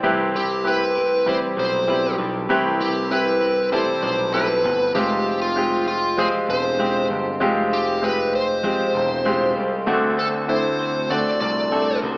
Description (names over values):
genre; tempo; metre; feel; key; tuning
pop; 98 BPM; 4/4; straight; C major; A4 = 440 Hz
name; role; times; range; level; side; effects
clear baby grand piano; accompaniment; 0.0-12.2 s; C3 to C5; -22 LUFS; equal; none
twelve-string electric guitar; riff; 0.0-12.2 s; C3 to C5; -29 LUFS; right 1 dB; none
overdriven picked electric bass; bass; 0.0-12.2 s; E1 to D2; -28 LUFS; equal; none
smooth overdriven lead guitar; melody; 0.4-12.0 s; F4 to D5; -22 LUFS; equal; none
room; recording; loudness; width
wet recital hall reverb, RT60 1.7 s; recorded in a church or concert hall, small speaker sound; -18 LUFS; side -27 dB against mid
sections
0.0-12.2 A section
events
none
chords
0.0 Cmaj7; 5.0 Fmadd9; 9.9 D7